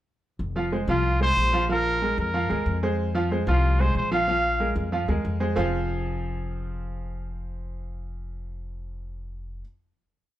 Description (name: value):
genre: latin, salsa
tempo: 186 BPM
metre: 4/4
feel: straight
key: F minor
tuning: A4 = 439 Hz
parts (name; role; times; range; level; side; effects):
- upright bass; bass; 0.4-9.6 s; F1 to F2; -27 LUFS; left 1 dB; none
- bright baby grand piano; accompaniment; 0.6-9.6 s; F3 to F5; -27 LUFS; right 1 dB; none
- clear trumpet; melody; 0.9-4.7 s; F4 to F5; -25 LUFS; equal; none
room: light reverb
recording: band playing live in one room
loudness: -22 LUFS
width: side -13 dB against mid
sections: 0.4-5.6 montuno (vamp); 5.6-8.2 final chord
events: none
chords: 0.4 Fm; 1.7 Bb5; 3.0 Fm; 4.3 Bb5; 5.6 Fm